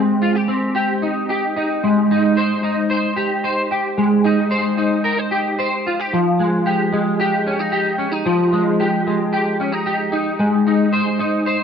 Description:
indie pop; 112 BPM; 4/4; straight; Ab major; A4 = 440 Hz
clean electric guitar; solo; 0.0-11.6 s; F3 to C5; -16 LUFS; equal; ensemble chorus, vibrato effect
light reverb, digital ambience; rough home demo mix; -16 LUFS; side -7 dB against mid
0.0-1.8 A section; 1.8-11.6 A section
0.0 Abmaj7; 6.1 Fm9; 10.4 Abmaj7

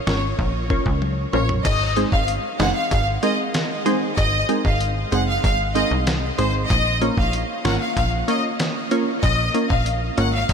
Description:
dancehall; 95 BPM; 4/4; straight; A4 = 437 Hz
bright studio violin section; melody; 0.1-10.5 s; C5 to Gb5; -23 LUFS; left 1 dB; analog delay
glassy wavetable pluck; accompaniment; 0.1-10.3 s; Ab3 to Eb5; -24 LUFS; right 1 dB; chorus
plucky analog bass; bass; 0.1-10.5 s; Gb1 to Db2; -23 LUFS; equal
dusty soul sampler-style drum kit; drums; 0.1-10.5 s; crash cymbal, hi-hat, kick drum, snare drum, toms; -25 LUFS; equal
moderate huge ambient reverb, RT60 6.3 s; dreamy mix soaked in reverb; -18 LUFS; side -6 dB against mid
0.0-1.6 A section; 1.6-10.5 B section
drum fill 1.0-1.6
0.0 Bbm; 1.6 Ab; 6.7 Bbm

